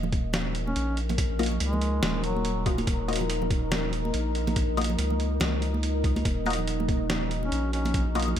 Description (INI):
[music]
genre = deep dubstep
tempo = 142 BPM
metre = 4/4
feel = swing 58% on 16ths, half-time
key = Eb minor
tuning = A4 = 440 Hz
[part]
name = deep dark ambient pad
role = sustained chords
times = 0.0-8.4 s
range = Eb4 to Bb4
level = -33 LUFS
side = left 1 dB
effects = chorus, built-in reverb
[part]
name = soft dub sub bass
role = bass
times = 0.0-8.4 s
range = Eb1 to Db2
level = -29 LUFS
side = equal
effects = none
[part]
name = congas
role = percussion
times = 0.0-8.3 s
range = none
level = -33 LUFS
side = right 2 dB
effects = dub echo
[part]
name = electronic kick drum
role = drums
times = 0.1-8.0 s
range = none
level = -26 LUFS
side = equal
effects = none
[part]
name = trip hop sampler-style drum kit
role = drums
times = 0.1-8.4 s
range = hi-hat, snare drum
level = -32 LUFS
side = right 1 dB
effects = none
[part]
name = warm duduk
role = melody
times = 0.7-2.7, 7.4-8.1 s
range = Gb3 to Db4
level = -34 LUFS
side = equal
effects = dub echo
[part]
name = filtered dub chord stab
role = stabs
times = 1.4-8.3 s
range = Bb3 to Eb5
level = -35 LUFS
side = left 5 dB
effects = phaser, analog chorus, dub echo
[sound]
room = digital ambience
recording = none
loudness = -24 LUFS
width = side -10 dB against mid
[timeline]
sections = 0.0-8.4 A section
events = none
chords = 0.0 Ebmadd9